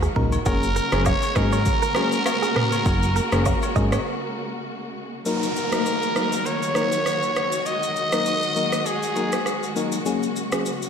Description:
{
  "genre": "afrobeats",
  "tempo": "100 BPM",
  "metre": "4/4",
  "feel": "swing 55% on 16ths",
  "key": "Eb minor",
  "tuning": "A4 = 440 Hz",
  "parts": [
    { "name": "growling trumpet", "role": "melody", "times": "0.0-9.8 s", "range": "Ab4 to Eb5", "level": "-25 LUFS", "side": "equal", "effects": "ping-pong delay" },
    { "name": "warm studio string section", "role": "sustained chords", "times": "0.0-10.9 s", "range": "Db3 to Gb4", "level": "-29 LUFS", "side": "equal", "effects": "none" },
    { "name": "direct-recorded clean electric guitar", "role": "riff", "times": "0.0-4.0 s", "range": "Gb4 to Eb5", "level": "-30 LUFS", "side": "right 6 dB", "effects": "analog chorus, ping-pong delay" },
    { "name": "plucky analog bass", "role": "bass", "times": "0.0-4.0 s", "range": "Gb1 to Db2", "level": "-22 LUFS", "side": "equal", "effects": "none" },
    { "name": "afro-pop drum kit", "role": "drums", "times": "0.0-10.9 s", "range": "kick drum, rim click, shaker, toms", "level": "-26 LUFS", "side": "right 1 dB", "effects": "overdrive" },
    { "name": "FM electric piano", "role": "accompaniment", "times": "0.2-10.7 s", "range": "Gb3 to Bb4", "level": "-27 LUFS", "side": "left 4 dB", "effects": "chorus" },
    { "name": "agogo bells and woodblock", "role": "percussion", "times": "0.3-4.1 s", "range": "none", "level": "-34 LUFS", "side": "left 4 dB", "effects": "none" },
    { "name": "downlifter", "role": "sound effects", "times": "5.3-10.1 s", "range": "none", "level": "-32 LUFS", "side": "left 1 dB", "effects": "none" }
  ],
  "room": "wet lush hall reverb, RT60 1.8 s",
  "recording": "dreamy mix soaked in reverb",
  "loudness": "-20 LUFS",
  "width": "side -7 dB against mid",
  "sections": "0.0-5.3 A section; 5.3-10.9 B section",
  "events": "break 4.1-5.3",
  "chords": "0.5 Gbadd9; 5.3 Ebm; 10.1 Gbadd9"
}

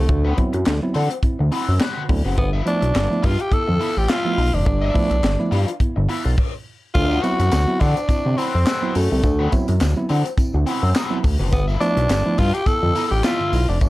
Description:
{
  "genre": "funk",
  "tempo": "105 BPM",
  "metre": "4/4",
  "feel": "swing 56% on 16ths",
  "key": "unclear",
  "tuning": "A4 = 440 Hz",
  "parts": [
    { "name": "growling tenor saxophone", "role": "melody", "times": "0.0-13.9 s", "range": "A3 to A4", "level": "-22 LUFS", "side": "equal", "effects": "slapback echo" },
    { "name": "mellow tine electric piano", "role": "stabs", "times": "0.0-13.9 s", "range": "G2 to E4", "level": "-26 LUFS", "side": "right 3 dB", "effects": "slow stereo tremolo, slapback echo" },
    { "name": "fat analog bass", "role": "bass", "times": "0.0-13.9 s", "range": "F1 to D3", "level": "-19 LUFS", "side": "equal", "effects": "none" },
    { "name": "crunchy overdriven guitar", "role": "accompaniment", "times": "0.1-13.9 s", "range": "C4 to F5", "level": "-28 LUFS", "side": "left 4 dB", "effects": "wah, plate reverb" },
    { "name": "tight funk drum kit", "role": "drums", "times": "0.1-13.9 s", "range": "crash cymbal, handclaps, hi-hat, kick drum, snare drum", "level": "-22 LUFS", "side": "equal", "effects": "none" },
    { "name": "tambourine", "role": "percussion", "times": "7.0-13.9 s", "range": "none", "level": "-42 LUFS", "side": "equal", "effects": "none" }
  ],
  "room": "little or no reverb",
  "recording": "dark, warm production",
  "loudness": "-17 LUFS",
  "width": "side -18 dB against mid",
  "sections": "0.0-6.9 A section; 6.9-13.9 B section",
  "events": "stop 6.4-6.9",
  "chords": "0.0 D13; 2.4 G13; 6.9 D13; 11.5 G13"
}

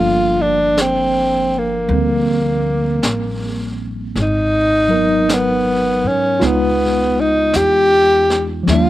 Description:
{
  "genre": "jazz ballad",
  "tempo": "53 BPM",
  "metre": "4/4",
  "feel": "swing 67% on 8ths",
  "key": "unclear",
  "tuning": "A4 = 440 Hz",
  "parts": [
    { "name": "breathy tenor saxophone", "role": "melody", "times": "0.0-8.9 s", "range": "Bb3 to G4", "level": "-15 LUFS", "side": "equal", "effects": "none" },
    { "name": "tine electric piano", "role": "accompaniment", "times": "0.0-8.9 s", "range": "F3 to Bb4", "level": "-20 LUFS", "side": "equal", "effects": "medium stereo tremolo" },
    { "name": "upright bass", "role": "bass", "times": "0.0-8.9 s", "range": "G1 to Ab2", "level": "-23 LUFS", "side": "equal", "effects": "none" },
    { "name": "jazz brush drum kit", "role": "drums", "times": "0.8-8.9 s", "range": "brushed snare drum, hi-hat, snare drum", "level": "-26 LUFS", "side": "equal", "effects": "none" }
  ],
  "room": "little or no reverb",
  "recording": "recorded outdoors, with no room sound",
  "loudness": "-13 LUFS",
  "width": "side -14 dB against mid",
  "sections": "0.0-8.9 A section",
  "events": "none",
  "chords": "0.0 Gm7; 4.2 Abm7; 6.4 C#9"
}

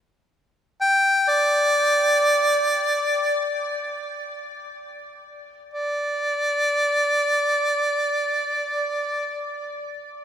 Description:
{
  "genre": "world meditative",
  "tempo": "free time",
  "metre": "none",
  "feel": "none",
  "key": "unclear",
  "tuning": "A4 = 439 Hz",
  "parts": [
    { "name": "warm harmonica", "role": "solo", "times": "0.8-9.5 s", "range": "D5 to G5", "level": "-20 LUFS", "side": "equal", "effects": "ping-pong delay" }
  ],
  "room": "wet huge ambient reverb, RT60 7.8 s",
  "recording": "none",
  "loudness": "-19 LUFS",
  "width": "side -9 dB against mid",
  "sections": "0.0-5.7 A section; 5.7-9.4 B section",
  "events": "none",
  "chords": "none"
}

